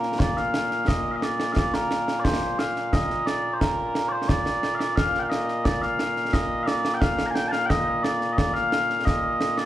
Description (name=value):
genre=scottish traditional, Scottish pipe music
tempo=88 BPM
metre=2/4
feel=straight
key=Bb major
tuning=A4 = 440 Hz
part: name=mellow small bagpipes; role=melody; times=0.0-9.7 s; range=Bb2 to Bb5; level=-24 LUFS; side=equal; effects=slapback echo
part: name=concert snare drum and concert bass drum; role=drums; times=0.0-9.7 s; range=none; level=-26 LUFS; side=equal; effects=none
room=light reverb, small room ambience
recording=live gig heard through the venue's PA, club reverb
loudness=-22 LUFS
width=side -13 dB against mid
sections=0.2-9.7 A section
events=none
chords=none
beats=| 0.20 0.88 | 1.56 2.24 | 2.92 3.61 | 4.29 4.97 | 5.65 6.33 | 7.01 7.70 | 8.38 9.06